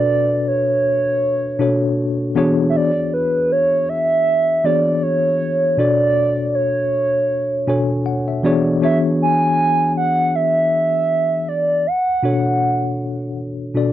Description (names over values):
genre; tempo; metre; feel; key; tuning
R&B; 79 BPM; 4/4; swing 57% on 16ths; B dorian; A4 = 438 Hz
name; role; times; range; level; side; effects
hollow clarinet-like synth lead; melody; 0.0-13.4 s; B4 to G#5; -17 LUFS; right 2 dB; chorus
mellow tine electric piano; accompaniment; 0.0-13.9 s; B2 to G#5; -19 LUFS; left 2 dB; medium stereo tremolo
room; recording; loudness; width
little or no reverb; dry, close 1970s-style studio recording; -15 LUFS; side -12 dB against mid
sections
0.0-13.9 A section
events
tine electric piano fill 7.3-8.8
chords
0.0 Bm9; 2.7 E13; 5.8 Bm9; 8.8 E13; 11.8 Bm9